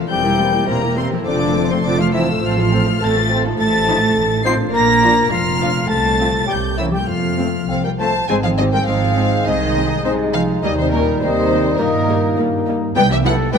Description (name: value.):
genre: cinematic, playful, whimsical film cue.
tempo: 103 BPM.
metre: 2/4.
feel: straight.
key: F major, Ab major from 8.3 s.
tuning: A4 = 440 Hz.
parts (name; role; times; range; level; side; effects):
dark studio violin section; second line; 0.0-13.6 s; E4 to A5; -23 LUFS; left 2 dB; none.
dark chamber viola section; accompaniment; 0.0-13.6 s; F3 to F4; -25 LUFS; right 2 dB; none.
concert harp; arpeggios; 0.0-13.6 s; G2 to D5; -25 LUFS; left 9 dB; none.
dark chamber double bass section; bass; 0.0-13.6 s; E1 to G2; -22 LUFS; right 4 dB; none.
warm studio cello section; bass; 0.0-13.6 s; Bb2 to C4; -23 LUFS; right 3 dB; none.
warm chamber violin section; melody; 0.1-13.6 s; Eb4 to C7; -23 LUFS; left 2 dB; none.
mellow clarinet; second line; 0.1-13.3 s; Bb3 to C5; -26 LUFS; left 1 dB; none.
mellow hollow silver concert flute; second line; 0.1-13.6 s; Db4 to C6; -23 LUFS; left 2 dB; none.
warm French horn section; sustained chords; 0.4-13.4 s; F3 to E4; -26 LUFS; left 2 dB; none.
warm bassoon; accompaniment; 8.3-13.4 s; G3 to C4; -24 LUFS; right 3 dB; none.
room: moderate concert hall reverb, RT60 2.4 s.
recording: none.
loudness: -14 LUFS.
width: side -6 dB against mid.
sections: 0.0-8.3 A section; 8.3-13.6 B section.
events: none.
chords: 0.1 C7/E; 1.3 F; 2.4 F/A; 3.6 F7/A; 4.7 Bb; 5.9 F/C; 6.5 C7b9; 7.1 F; 8.3 Ab; 9.5 Ab/C; 10.6 Eb; 11.8 Eb/G; 13.0 Cmaj7.